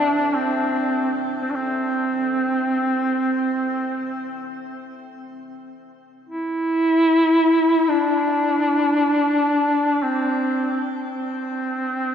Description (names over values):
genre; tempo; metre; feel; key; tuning
ambient; free time; none; none; unclear; A4 = 440 Hz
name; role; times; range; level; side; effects
clear duduk; melody; 0.0-12.1 s; C4 to E4; -19 LUFS; equal; shimmer reverb, diffuse ambient delay
dark analog pad; sustained chords; 0.0-5.7 s; C4 to E5; -36 LUFS; right 1 dB; chorus, phaser, shimmer reverb
room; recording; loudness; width
wet cathedral reverb, RT60 6.2 s; in a vast, echoing space; -18 LUFS; side -8 dB against mid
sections
0.0-5.7 A section; 5.7-12.1 B section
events
fade-out on analog synth pad 0.0-5.7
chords
0.0 Am; 5.7 N.C.